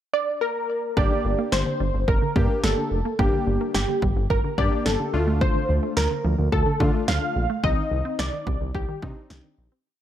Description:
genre	synth-pop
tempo	108 BPM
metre	4/4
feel	straight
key	G minor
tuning	A4 = 440 Hz
part	funky polysynth comp	melody	0.1-9.5 s	G4 to F5	-26 LUFS	right 1 dB	chorus, ping-pong delay
part	warm analog keys	accompaniment	1.0-9.7 s	A3 to G4	-29 LUFS	left 4 dB	chorus
part	wide unison pluck	arpeggios	1.0-9.8 s	D3 to C4	-31 LUFS	right 2 dB	ping-pong delay
part	smooth gliding synth bass	bass	1.0-9.7 s	F1 to D3	-25 LUFS	equal	none
part	punchy analog drum machine	drums	1.0-9.4 s	kick drum, snare drum	-25 LUFS	equal	none
room	light reverb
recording	none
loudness	-21 LUFS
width	side -11 dB against mid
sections	0.0-1.0 pickup bar; 1.0-9.9 verse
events	fade-out 7.6-9.9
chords	0.0 N.C.; 1.0 Gm; 5.1 Dm; 7.6 Cmadd9

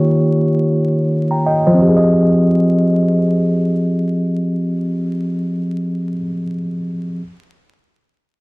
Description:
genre	hip hop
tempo	free time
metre	none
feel	none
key	F minor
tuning	A4 = 440 Hz
part	tine electric piano	solo	0.0-7.2 s	Eb3 to Bb5	-14 LUFS	equal	fast stereo tremolo, cassette tape, low-pass filter
room	wet studio reverb, RT60 0.6 s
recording	home recording on cassette, vinyl crackle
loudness	-14 LUFS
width	side -26 dB against mid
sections	0.0-1.8 A section; 1.8-4.7 B section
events	filter sweep on tine electric piano 0.0-1.8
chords	0.0 Eb9; 1.8 Fm7

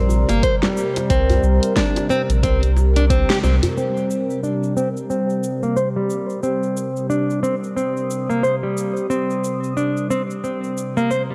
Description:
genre	organic downtempo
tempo	90 BPM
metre	4/4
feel	swing 59% on 16ths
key	C minor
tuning	A4 = 439 Hz
part	warm analog pad	sustained chords	0.0-11.3 s	C3 to Eb6	-27 LUFS	equal	chorus, sidechain pumping
part	nylon-string guitar	arpeggios	0.0-11.3 s	G3 to C5	-24 LUFS	equal	low-pass filter, tape echo
part	warm sub bass	bass	0.0-3.6 s	G1 to C2	-19 LUFS	equal	sidechain pumping
part	deep house drum kit	drums	0.1-11.3 s	hi-hat, shaker, snare drum	-29 LUFS	equal	none
part	djembe	percussion	0.1-3.7 s	none	-29 LUFS	equal	none
part	electronic kick drum	drums	0.4-3.3 s	none	-24 LUFS	equal	none
room	moderate concert hall reverb, RT60 2.4 s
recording	worn, warbling old tape, cassette tape, warbly pitch drift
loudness	-20 LUFS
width	mono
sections	0.0-3.8 A section; 3.8-11.3 B section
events	band accent 3.3-3.6; filter sweep on nylon-string guitar 3.8-11.3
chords	0.0 Gm; 3.8 Cm7

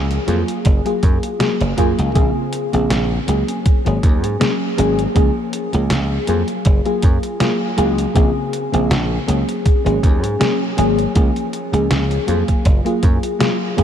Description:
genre	vaporwave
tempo	80 BPM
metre	4/4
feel	swing 54% on 16ths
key	Gb lydian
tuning	A4 = 436 Hz
part	mellow FM electric piano	accompaniment	0.0-13.8 s	Db3 to Ab4	-19 LUFS	left 1 dB	wide subtle chorus, tape echo
part	dry thumbed slap bass	bass	0.0-13.8 s	Gb1 to Ab2	-19 LUFS	equal	tube saturation
part	detuned 8-bit digital drum machine	drums	0.1-13.8 s	hi-hat, snare drum	-24 LUFS	equal	overdrive
part	electronic kick drum	drums	0.7-13.8 s	none	-15 LUFS	equal	overdrive
room	moderate huge ambient reverb, RT60 4.1 s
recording	dreamy mix soaked in reverb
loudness	-15 LUFS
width	side -9 dB against mid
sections	0.0-13.8 A section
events	none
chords	0.0 Db6; 0.7 Gbmaj9; 2.2 Bbm9; 3.7 Ab9sus4; 5.2 Db6; 6.7 Gbmaj9; 8.2 Bbm9; 9.7 Ab9sus4; 11.2 Db6; 12.7 Gbmaj9

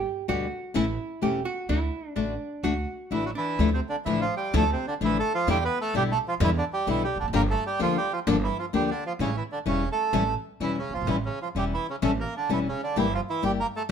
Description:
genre	tango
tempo	128 BPM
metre	4/4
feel	rubato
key	D major, D minor from 3.6 s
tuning	A4 = 437 Hz
part	archtop guitar, miked and amplified	second line	0.0-3.6 s	D4 to G4	-31 LUFS	right 4 dB	none
part	upright bass	bass	0.0-13.6 s	E1 to E2	-29 LUFS	right 2 dB	none
part	flamenco guitar	accompaniment	0.3-13.9 s	B2 to G4	-27 LUFS	left 6 dB	none
part	bandoneon	melody	3.1-13.8 s	C3 to B4	-27 LUFS	right 3 dB	none
room	moderate studio reverb, RT60 0.9 s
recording	faint mains hum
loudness	-24 LUFS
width	side -7 dB against mid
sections	0.0-3.6 A section; 3.6-13.9 B section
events	none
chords	0.0 G; 0.8 A; 1.7 D; 3.6 Dmadd9; 5.5 Em7; 7.3 Gm7; 9.2 A7; 13.0 Edim/G

